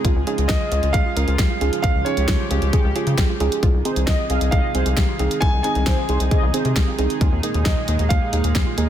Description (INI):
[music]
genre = synth-pop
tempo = 134 BPM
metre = 4/4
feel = straight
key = Ab major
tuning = A4 = 440 Hz
[part]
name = chorused pulse-width pad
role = sustained chords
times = 0.0-8.9 s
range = Bb2 to Ab4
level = -28 LUFS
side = right 1 dB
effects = none
[part]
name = soft round pluck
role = arpeggios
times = 0.0-8.9 s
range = Eb4 to Ab4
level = -34 LUFS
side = left 1 dB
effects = none
[part]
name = rubbery square bass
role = bass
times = 0.0-8.9 s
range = C2 to Db3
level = -21 LUFS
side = left 1 dB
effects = none
[part]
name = pop drum kit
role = drums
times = 0.0-8.9 s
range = hi-hat, kick drum, snare drum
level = -21 LUFS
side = equal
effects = none
[part]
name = soft round pluck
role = accompaniment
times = 0.3-8.9 s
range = Bb3 to Bb4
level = -26 LUFS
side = right 5 dB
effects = chorus
[part]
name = dark concert grand piano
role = melody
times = 0.5-8.9 s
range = Db5 to Ab5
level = -26 LUFS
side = right 1 dB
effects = ping-pong delay
[part]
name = mellow synth brass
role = second line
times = 3.9-6.6 s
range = C5 to F5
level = -30 LUFS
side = left 1 dB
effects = chorus, ping-pong delay
[sound]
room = light reverb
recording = dense, heavily limited modern master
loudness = -17 LUFS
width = side -10 dB against mid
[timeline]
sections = 0.0-8.9 A section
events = none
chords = 0.0 Db; 3.6 Ab/C; 7.2 Ebsus4